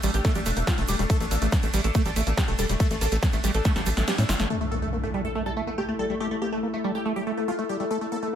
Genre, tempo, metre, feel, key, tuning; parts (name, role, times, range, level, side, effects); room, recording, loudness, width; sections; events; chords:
psychedelic trance; 141 BPM; 4/4; straight; A4 = 440 Hz
supersaw stab; melody; 0.0-8.3 s; A3 to A4; -32 LUFS; right 1 dB; phaser, sidechain pumping, digital delay
overtone-sweeping drone; sustained chords; 0.0-8.4 s; A3 to A4; -34 LUFS; left 4 dB; chorus, built-in reverb, phaser, vintage 12-bit sampler grit, sidechain pumping
liquid acid bass; riff; 0.0-8.4 s; G3 to E4; -30 LUFS; moving between left 6 dB and right 7 dB; chorus, auto-pan, sidechain pumping, digital delay
tight sequencer bass; bass; 0.0-4.5 s; E1 to A2; -26 LUFS; equal
techno drum kit; drums; 0.0-8.4 s; crash cymbal, hi-hat, ride cymbal, snare drum; -30 LUFS; right 1 dB; low-pass filter on hats, low-pass filter on cymbals, low-pass filter on snare, low-pass filter on room
egg shaker; percussion; 0.0-4.5 s; -40 LUFS; left 2 dB
electronic kick drum; drums; 0.2-3.7 s; -25 LUFS; equal
impact; sound effects; 4.5-6.2 s; -33 LUFS; equal
airy breathy pad; texture; 4.7-8.4 s; E4 to E5; -36 LUFS; equal; chorus, sidechain pumping
light reverb; -23 LUFS; side -9 dB against mid
0.0-4.5 A section; 4.5-8.4 B section
drop 0.0-4.5; drum fill 3.7-4.5; kick drops out 4.1-4.5; impact 4.5-6.2; filter sweep on acid bass 4.5-8.4; filter sweep on synth drone 4.5-8.4
0.0 A5